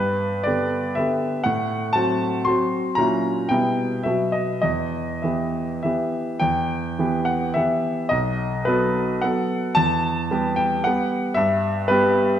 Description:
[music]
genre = classical, romantic triple-time dance for piano with dotted rhythms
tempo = 96-129 BPM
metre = 3/4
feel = rubato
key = E minor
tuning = A4 = 442 Hz
[part]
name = clear grand piano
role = solo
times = 0.0-12.4 s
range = B1 to C6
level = -20 LUFS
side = equal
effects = none
[sound]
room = moderate scoring stage reverb, RT60 1.7 s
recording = dark, warm production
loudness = -20 LUFS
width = side -10 dB against mid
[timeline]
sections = 0.0-6.4 A section; 6.4-12.4 B section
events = none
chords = 0.0 G; 1.5 F#dim/A; 3.0 F#7/A#; 3.5 Em/B; 4.1 B; 4.6 Em; 8.1 B7; 9.8 Em; 11.4 Em/G

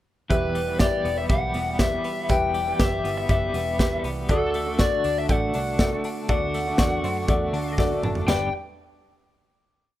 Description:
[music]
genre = jangly indie pop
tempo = 120 BPM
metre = 4/4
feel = straight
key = unclear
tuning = A4 = 440 Hz
[part]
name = lead guitar through a small cranked amp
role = melody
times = 0.3-8.5 s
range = A4 to G5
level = -27 LUFS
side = left 3 dB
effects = overdrive, slapback echo
[part]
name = electric guitar through a small old amp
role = accompaniment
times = 0.3-8.5 s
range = E2 to G4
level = -32 LUFS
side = right 6 dB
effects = spring reverb
[part]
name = warm upright piano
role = accompaniment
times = 0.3-8.5 s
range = F#4 to A5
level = -28 LUFS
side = left 1 dB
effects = none
[part]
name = twelve-string electric guitar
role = arpeggios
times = 0.3-8.5 s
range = E2 to G4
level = -32 LUFS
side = left 2 dB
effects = tremolo, slapback echo
[part]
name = vintage muted picked electric bass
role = bass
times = 0.3-8.5 s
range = E1 to F#2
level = -31 LUFS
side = equal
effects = none
[part]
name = modern studio drum kit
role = drums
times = 0.3-8.4 s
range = crash cymbal, hi-hat, kick drum, snare drum, toms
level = -24 LUFS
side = equal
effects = none
[sound]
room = little or no reverb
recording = rough home demo mix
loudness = -21 LUFS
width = side -14 dB against mid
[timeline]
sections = 0.3-8.3 pre-chorus; 8.3-10.0 final chord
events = upright piano fill 7.5-8.3; drum fill 7.8-8.3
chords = 0.3 Em; 4.3 D; 8.3 G

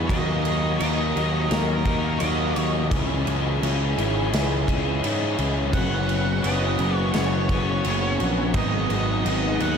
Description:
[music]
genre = rock, shoegaze and dream pop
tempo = 85 BPM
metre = 4/4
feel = straight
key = unclear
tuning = A4 = 440 Hz
[part]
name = accordion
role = sustained chords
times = 0.0-9.8 s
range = C#4 to A#5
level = -32 LUFS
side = right 4 dB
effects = light tremolo tuning
[part]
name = direct-recorded clean electric guitar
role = arpeggios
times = 0.0-9.8 s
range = E3 to G#4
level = -33 LUFS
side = right 6 dB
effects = wide subtle chorus, analog delay
[part]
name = crunchy overdriven guitar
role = riff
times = 0.0-9.8 s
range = F#2 to D#4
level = -26 LUFS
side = left 6 dB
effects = ensemble chorus
[part]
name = fuzz picked electric bass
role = bass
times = 0.0-9.8 s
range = F#1 to G#2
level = -25 LUFS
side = equal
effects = overdrive
[part]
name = octave-fuzz lead guitar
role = melody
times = 0.1-9.8 s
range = A#4 to F#5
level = -30 LUFS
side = right 2 dB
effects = distortion, analog delay
[part]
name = big rock drum kit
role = drums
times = 0.1-9.8 s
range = crash cymbal, kick drum, snare drum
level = -29 LUFS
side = right 1 dB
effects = none
[part]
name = twangy electric guitar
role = riff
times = 8.5-9.8 s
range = G#2 to D#4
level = -33 LUFS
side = right 11 dB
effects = reverse reverb
[sound]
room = moderate huge ambient reverb, RT60 7.8 s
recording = dreamy mix soaked in reverb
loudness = -20 LUFS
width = side -7 dB against mid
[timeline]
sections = 0.0-9.8 A section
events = none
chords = 0.1 D#m; 2.9 C#m; 5.7 F#sus4; 8.5 G#m7

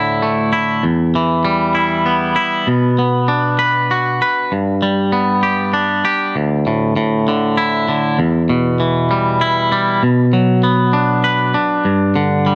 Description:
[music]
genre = rock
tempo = 98 BPM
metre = 3/4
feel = straight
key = D major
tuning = A4 = 440 Hz
[part]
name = twangy electric guitar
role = solo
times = 0.0-12.6 s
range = D2 to B4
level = -16 LUFS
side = equal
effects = analog delay
[sound]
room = moderate large studio reverb, RT60 1.3 s, digital ambience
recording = dark, warm production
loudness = -16 LUFS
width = mono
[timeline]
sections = 0.0-6.4 A section; 6.4-12.6 B section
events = none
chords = 0.0 Dsus2; 0.8 Em; 2.7 Bm; 4.5 G; 6.4 Dsus2; 8.2 Em; 10.0 Bm; 11.8 G5

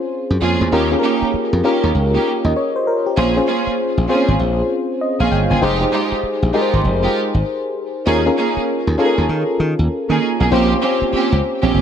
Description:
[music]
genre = R&B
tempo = 98 BPM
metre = 4/4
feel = swing 63% on 16ths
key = Bb dorian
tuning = A4 = 440 Hz
[part]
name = FM electric piano with tremolo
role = accompaniment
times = 0.0-11.8 s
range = C4 to Ab5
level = -18 LUFS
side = left 3 dB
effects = none
[part]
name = slap bass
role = bass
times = 0.3-11.8 s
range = F1 to Eb3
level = -17 LUFS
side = equal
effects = none
[part]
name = warm studio string section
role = stabs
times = 0.4-11.8 s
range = Ab3 to Ab4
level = -20 LUFS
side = right 5 dB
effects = ping-pong delay
[sound]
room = moderate echo chamber reverb, RT60 1.7 s, small room ambience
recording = dark, warm production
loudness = -15 LUFS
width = side -8 dB against mid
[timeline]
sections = 0.0-10.5 A section; 10.5-11.8 B section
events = none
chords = 0.0 Bbm7; 0.7 Eb7; 3.2 Bbm7; 5.6 Fm9; 8.1 Eb7sus4; 10.5 Bbm69

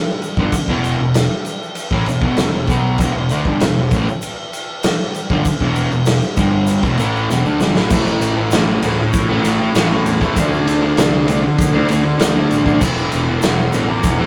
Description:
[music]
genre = garage rock duo or trio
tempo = 98 BPM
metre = 4/4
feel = straight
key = E minor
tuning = A4 = 444 Hz
[part]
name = raw garage drum kit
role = drums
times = 0.2-14.2 s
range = crash cymbal, kick drum, ride cymbal, snare drum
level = -20 LUFS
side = equal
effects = none
[part]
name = tube shaker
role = percussion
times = 0.2-14.2 s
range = none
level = -37 LUFS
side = equal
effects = none
[part]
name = fuzz guitar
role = riff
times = 0.4-14.3 s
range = E2 to D4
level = -18 LUFS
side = equal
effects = distortion
[part]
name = fuzz fingered electric bass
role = bass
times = 0.4-14.3 s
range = E1 to E2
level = -27 LUFS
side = equal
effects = overdrive
[sound]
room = moderate small room reverb, RT60 0.5 s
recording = rough rehearsal-room recording, tube saturation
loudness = -16 LUFS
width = mono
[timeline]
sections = 0.0-7.9 A section; 7.9-14.3 B section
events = drum fill 7.3-7.9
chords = 0.0 Em; 7.9 A5; 10.4 D5; 12.8 E5

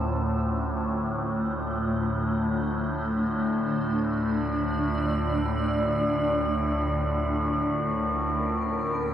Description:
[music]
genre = dark ambient drone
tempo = free time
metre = none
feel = none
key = D minor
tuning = A4 = 443 Hz
[part]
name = granular cloud pad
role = sustained chords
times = 0.0-9.1 s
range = A3 to D5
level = -29 LUFS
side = equal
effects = built-in reverb
[part]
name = overtone-sweeping drone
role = drone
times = 0.0-9.1 s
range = D2 to A2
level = -26 LUFS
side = equal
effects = chorus, built-in reverb
[sound]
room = wet spring reverb, RT60 2.7 s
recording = none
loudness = -24 LUFS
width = side -10 dB against mid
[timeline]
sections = 0.0-9.1 A section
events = none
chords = 0.0 Dm; 7.2 Bbm

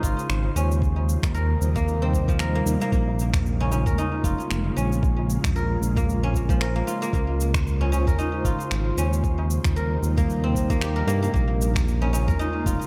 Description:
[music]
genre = organic downtempo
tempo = 114 BPM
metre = 4/4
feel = swing 56% on 16ths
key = Bb dorian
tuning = A4 = 439 Hz
[part]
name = ethereal airy pad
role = sustained chords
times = 0.0-12.9 s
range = C3 to C5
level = -32 LUFS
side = equal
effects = ensemble chorus, built-in reverb, sidechain pumping
[part]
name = guzheng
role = arpeggios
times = 0.0-12.9 s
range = F3 to Bb4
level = -32 LUFS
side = equal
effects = delay
[part]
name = smooth synth bass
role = bass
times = 0.0-12.8 s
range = F1 to G2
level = -26 LUFS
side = equal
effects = sidechain pumping
[part]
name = electronic cabasa and finger snaps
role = drums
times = 0.0-12.9 s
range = none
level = -36 LUFS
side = equal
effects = none
[part]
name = electronic kick drum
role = drums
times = 0.0-12.8 s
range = none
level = -27 LUFS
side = equal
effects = none
[part]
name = tabla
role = percussion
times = 0.2-12.9 s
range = none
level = -34 LUFS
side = equal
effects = none
[sound]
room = light reverb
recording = none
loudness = -23 LUFS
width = mono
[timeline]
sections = 0.0-12.9 A section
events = none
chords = 0.0 Dbmaj7; 0.8 Eb6; 2.9 Bbm7; 7.1 Dbmaj7; 9.2 Eb6; 11.3 Bbm7

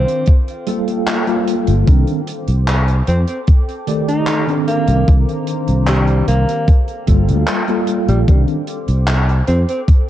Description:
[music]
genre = vaporwave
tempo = 75 BPM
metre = 4/4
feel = straight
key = C dorian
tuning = A4 = 438 Hz
[part]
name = breathy alto saxophone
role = melody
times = 0.0-9.8 s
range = G3 to Eb4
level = -23 LUFS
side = equal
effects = tape echo
[part]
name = tine electric piano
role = accompaniment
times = 0.0-8.6 s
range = Eb3 to D5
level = -19 LUFS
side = equal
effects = fast stereo tremolo, wide subtle chorus, vintage 12-bit sampler grit, tape echo
[part]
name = warbly tape-like pad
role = sustained chords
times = 0.0-10.1 s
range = A4 to D6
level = -29 LUFS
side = left 3 dB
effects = chorus, built-in reverb
[part]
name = fingered electric bass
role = bass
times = 0.0-9.6 s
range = G1 to F2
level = -14 LUFS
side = equal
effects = none
[part]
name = damped 70s drum kit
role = drums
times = 0.1-10.0 s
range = handclaps, hi-hat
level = -23 LUFS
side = equal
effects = vintage 12-bit sampler grit
[part]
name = electronic kick drum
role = drums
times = 0.3-10.0 s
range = none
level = -11 LUFS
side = equal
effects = vintage 12-bit sampler grit
[sound]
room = light reverb, small room ambience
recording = dark, warm production, cassette tape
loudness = -13 LUFS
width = side -12 dB against mid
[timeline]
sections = 0.0-10.1 A section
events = none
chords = 0.3 Gm9; 1.9 Cm9; 3.1 F13 (rootless); 4.7 Cm9; 6.7 Gm9; 8.3 Cm9; 9.5 F69

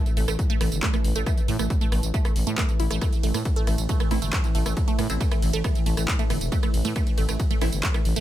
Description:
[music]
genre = driving peak-time techno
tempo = 137 BPM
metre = 4/4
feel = straight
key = unclear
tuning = A4 = 438 Hz
[part]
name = deep dark ambient pad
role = drone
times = 0.0-8.2 s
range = A2 to E3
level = -33 LUFS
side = left 1 dB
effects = chorus, built-in reverb, sidechain pumping
[part]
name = techno drum kit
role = drums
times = 0.1-8.2 s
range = handclaps, hi-hat, ride cymbal, rim click, tambourine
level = -32 LUFS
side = right 1 dB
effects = overdrive, small room reverb, sidechain pumping on hats, sidechain pumping on cymbals, sidechain pumping on perc
[part]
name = resonant blip pluck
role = riff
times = 0.2-8.2 s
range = A3 to E4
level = -31 LUFS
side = right 5 dB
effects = phaser, sidechain pumping, digital delay
[part]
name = growling FM bass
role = bass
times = 0.2-8.2 s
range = E1 to A2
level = -25 LUFS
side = equal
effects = sidechain pumping
[part]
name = electronic kick drum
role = drums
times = 0.4-7.9 s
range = none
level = -23 LUFS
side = equal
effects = overdrive, small room reverb
[part]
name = filtered dub chord stab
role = stabs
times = 4.1-7.7 s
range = A3 to E4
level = -32 LUFS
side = right 2 dB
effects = phaser, lush chorus, sidechain pumping, digital delay
[sound]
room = little or no reverb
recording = none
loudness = -21 LUFS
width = side -13 dB against mid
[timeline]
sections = 0.0-8.2 A section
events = none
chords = 0.0 A5

